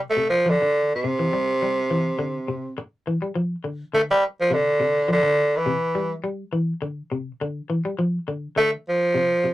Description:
afrobeat; 104 BPM; 4/4; swing 53% on 16ths; D minor; A4 = 440 Hz
semi-hollow electric guitar; arpeggios; 0.0-9.5 s; C3 to G3; -26 LUFS; left 1 dB
raspy tenor saxophone; melody; 0.1-9.5 s; C3 to A3; -20 LUFS; equal
wet booth ambience, RT60 0.2 s; rough rehearsal-room recording; -20 LUFS; side -15 dB against mid
0.0-9.5 A section
0.0 Dm7; 1.0 Cadd9; 3.4 Dm7; 5.7 Cadd9; 8.0 Dm7

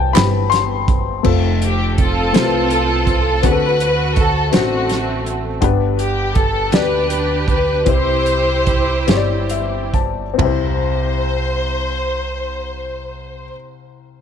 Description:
slow gospel; 44-55 BPM (dotted quarters); 6/8; straight; C major; A4 = 440 Hz
warm baby grand piano; accompaniment; 0.0-14.2 s; C2 to C6; -21 LUFS; left 12 dB
upright bass; bass; 0.0-13.5 s; F1 to D2; -21 LUFS; right 2 dB
warm soul drum kit; drums; 0.2-10.6 s; crash cymbal, hi-hat, kick drum, ride cymbal, snare drum, toms; -18 LUFS; right 2 dB
group handclap; percussion; 0.2-0.5 s; -24 LUFS; right 18 dB
warm symphonic string section; melody; 1.6-13.5 s; A3 to C5; -19 LUFS; equal
light reverb, small room ambience; 1960s-style stereo with parts hard left and right; -14 LUFS; side -8 dB against mid
0.0-1.2 A section; 1.2-10.4 B section; 10.4-14.2 C section
grand piano solo 0.0-1.2; slowing down 5.6-10.4; grand piano fill 9.1-10.4
0.0 C; 1.2 F; 3.4 D7; 5.6 G; 7.9 C

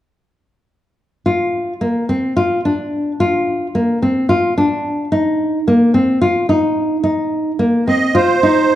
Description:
contemporary instrumental, contemporary; 218 BPM (eighths); 7/8; straight; A4 = 440 Hz
nylon-string guitar; arpeggios; 1.3-8.8 s; Bb3 to F4; -14 LUFS; left 1 dB
musette accordion; melody; 7.9-8.8 s; C5 to Eb5; -14 LUFS; right 5 dB
wet recital hall reverb, RT60 1.5 s; dark, warm production; -14 LUFS; side -13 dB against mid
1.3-8.8 A section
1.3 F5; 5.1 Bbsus24

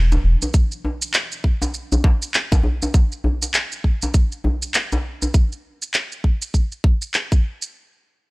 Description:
organic downtempo; 100 BPM; 4/4; swing 60% on 16ths
electronic shaker and handclaps; drums; 0.1-7.7 s; -22 LUFS; right 1 dB
djembe; percussion; 0.1-5.3 s; -22 LUFS; equal
electronic kick drum; drums; 0.5-7.4 s; -16 LUFS; equal
little or no reverb; dry, gritty hardware recording, transformer saturation; -18 LUFS; side -24 dB against mid
0.0-7.7 A section

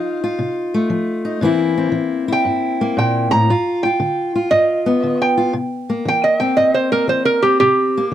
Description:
acoustic country blues, solo or duo; 117 BPM; 4/4; swing 68% on 8ths; C mixolydian; A4 = 440 Hz
lap resonator guitar; melody; 0.0-8.1 s; G4 to Bb5; -16 LUFS; right 2 dB
fingerpicked steel-string acoustic guitar; accompaniment; 0.0-8.1 s; G2 to F4; -18 LUFS; left 2 dB
moderate studio reverb, RT60 0.6 s; dry, close 1970s-style studio recording; -15 LUFS; side -11 dB against mid
0.0-5.6 A section; 5.6-8.1 B section
resonator guitar played with a steel bar solo 5.6-8.1
0.0 F7; 1.4 C7; 3.5 G7; 5.6 C7

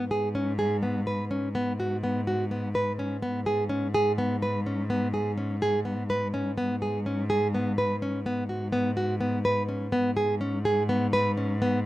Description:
contemporary instrumental, chamber music in an uneven meter; 250 BPM (eighths); 7/8; straight; A4 = 440 Hz
nylon-string guitar; arpeggios; 0.0-11.8 s; B3 to B4; -27 LUFS; equal
dark cello; bass; 0.0-11.9 s; G#2; -30 LUFS; equal
little or no reverb; close, detailed microphones; -25 LUFS; side -16 dB against mid
0.0-11.9 A section
0.0 C#5/G#; 1.5 F#sus4/G#; 3.2 C#5/G#; 8.3 F#sus4/G#; 9.9 G#madd11

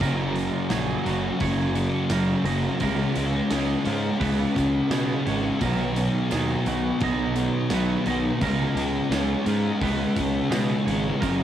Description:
rock, shoegaze and dream pop; 86 BPM; 4/4; straight; Db mixolydian; A4 = 441 Hz
twangy electric guitar; arpeggios; 0.0-11.4 s; F4 to Eb5; -35 LUFS; right 10 dB; wide subtle chorus, cassette tape, tape echo
crunchy overdriven guitar; riff; 0.0-11.4 s; Gb2 to Db4; -31 LUFS; right 3 dB; cassette tape
overdriven semi-hollow guitar; riff; 0.0-11.4 s; Gb2 to Gb4; -30 LUFS; right 10 dB; reverse reverb, cassette tape
thick fuzz guitar; riff; 0.0-11.4 s; Gb2 to Db4; -25 LUFS; left 4 dB; distortion, analog chorus, cassette tape
fuzz picked electric bass; bass; 0.0-11.4 s; Gb1 to Cb3; -28 LUFS; equal; overdrive
big rock drum kit; drums; 0.0-11.4 s; hi-hat, kick drum, snare drum; -33 LUFS; equal; cassette tape
tambourine; percussion; 0.0-11.4 s; -46 LUFS; right 13 dB
studio reverb; home recording on cassette; -22 LUFS; side -10 dB against mid
0.0-11.4 A section
0.0 Gb; 2.8 Db7; 5.6 Cb; 8.4 Db7

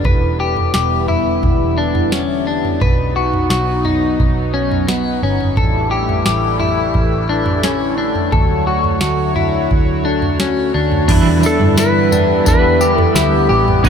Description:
dream pop; 87 BPM; 4/4; straight; E dorian; A4 = 441 Hz
phased analog pad; sustained chords; 0.0-13.9 s; D3 to D#5; -19 LUFS; right 1 dB; phaser, chorus, shimmer reverb
clean electric guitar; arpeggios; 0.0-13.9 s; B3 to B4; -18 LUFS; left 5 dB; wide subtle chorus, ping-pong delay, shimmer reverb
vintage muted picked electric bass; bass; 0.0-13.9 s; E1 to G2; -20 LUFS; right 1 dB
booming analog drum machine; drums; 0.0-13.9 s; crash cymbal, kick drum, snare drum, tambourine, toms; -18 LUFS; right 2 dB
semi-hollow electric guitar; accompaniment; 11.1-13.9 s; E2 to E4; -19 LUFS; right 5 dB; tremolo, analog chorus, shimmer reverb
clean lap steel guitar; melody; 11.5-13.6 s; G4 to B4; -16 LUFS; left 1 dB; ping-pong delay, shimmer reverb
light reverb; -13 LUFS; side -7 dB against mid
0.0-11.1 A section; 11.1-13.9 B section
0.1 Em7; 2.8 B; 5.6 A7sus4; 8.3 Dmaj7; 11.1 Em7

